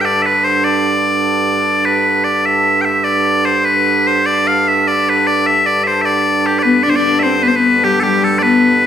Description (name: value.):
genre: medieval.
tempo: 100 BPM (dotted quarters).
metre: 6/8.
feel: straight.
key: G major.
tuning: A4 = 440 Hz.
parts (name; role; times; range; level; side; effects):
loud bright bagpipes; melody; 0.0-8.9 s; G4 to G5; -13 LUFS; left 1 dB; none.
dark hurdy-gurdy; drone; 0.0-8.9 s; G2 to D3; -18 LUFS; right 3 dB; none.
warm viola da gamba; second line; 6.6-8.8 s; G3 to D4; -14 LUFS; left 4 dB; none.
room: wet recital hall reverb, RT60 1.5 s.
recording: none.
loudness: -11 LUFS.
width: side -9 dB against mid.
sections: 0.0-6.6 A section; 6.6-8.9 B section.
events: none.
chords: none.